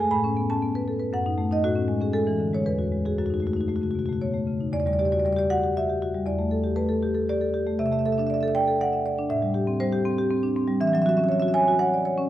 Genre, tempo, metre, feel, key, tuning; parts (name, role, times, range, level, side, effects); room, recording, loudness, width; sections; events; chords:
classical, contemporary piece for solo marimba; 119 BPM; 3/4; straight; F# minor, E minor from 4.7 s; A4 = 439 Hz
marimba with medium hard mallets; solo; 0.0-12.3 s; E2 to B5; -22 LUFS; equal
wet recital hall reverb, RT60 1.4 s; dark, warm production; -22 LUFS; side -13 dB against mid
0.0-4.7 A section; 4.7-12.3 B section
0.1 Aadd9; 1.1 F#m6; 1.6 Amaj7; 2.6 Eadd9; 3.2 F#m6; 4.7 Em9; 6.3 Gadd9/E; 7.8 C69; 9.3 Am7; 10.8 Esus2